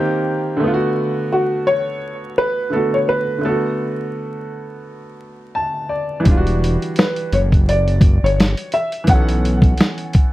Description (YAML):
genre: lo-fi hip hop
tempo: 85 BPM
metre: 4/4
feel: swing 59% on 16ths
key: unclear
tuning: A4 = 440 Hz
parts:
  - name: clear upright piano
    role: accompaniment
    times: 0.0-10.3 s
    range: D3 to A5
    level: -21 LUFS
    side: right 1 dB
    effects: low-pass filter
  - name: felt-muted upright piano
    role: melody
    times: 1.3-10.3 s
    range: F#4 to F#5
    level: -20 LUFS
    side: equal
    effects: low-pass filter
  - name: fat analog bass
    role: bass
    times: 6.3-9.7 s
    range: E1 to B1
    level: -17 LUFS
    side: equal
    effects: none
  - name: dusty soul sampler-style drum kit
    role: drums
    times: 6.3-10.3 s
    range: hi-hat, kick drum, snare drum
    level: -14 LUFS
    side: equal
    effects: none
room: light reverb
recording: dark, warm production, vinyl crackle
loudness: -15 LUFS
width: side -16 dB against mid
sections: 0.0-10.3 A section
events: upright piano fill 5.2-6.3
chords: 0.0 D#6; 0.6 D6; 6.3 Em9; 9.1 B9sus4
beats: | 0.61 1.31 2.02 2.73 | 3.43 4.14 4.84 5.55 | 6.25 6.96 7.67 8.37 | 9.08 9.79